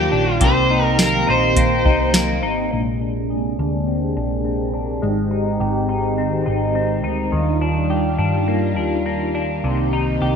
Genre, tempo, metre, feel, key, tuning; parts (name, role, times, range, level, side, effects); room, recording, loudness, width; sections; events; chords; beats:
dream pop; 104 BPM; 4/4; straight; Bb mixolydian; A4 = 436 Hz
overdriven slide guitar; melody; 0.0-2.1 s; G4 to C5; -20 LUFS; right 1 dB; lush chorus, ping-pong delay
ensemble organ-string; sustained chords; 0.0-10.4 s; C3 to G4; -22 LUFS; right 1 dB; phaser, ensemble chorus, low-pass filter
semi-hollow electric guitar; arpeggios; 0.0-10.4 s; Bb2 to Ab4; -23 LUFS; left 3 dB; analog chorus, low-pass filter, ping-pong delay
hollow-body short-scale picked electric bass; bass; 0.0-10.4 s; Ab1 to G2; -23 LUFS; equal
soft vintage rhythm box; drums; 0.4-2.3 s; hi-hat, kick drum, snare drum, tambourine; -19 LUFS; equal; overdrive, gated reverb
moderate plate reverb, RT60 2.0 s, digital ambience; bright 1980s-style digital production; -17 LUFS; side -6 dB against mid
0.0-2.7 A section; 2.7-10.4 B section
filter sweep 2.7-10.4
0.4 Cm7; 2.7 Bb9; 5.0 Abmaj7; 7.3 Ebmaj9; 9.6 Cm7
| 0.41 0.99 1.56 2.14 | 2.72 3.29 3.87 4.45 | 5.02 5.60 6.18 6.75 | 7.33 7.91 8.49 9.06 | 9.64 10.22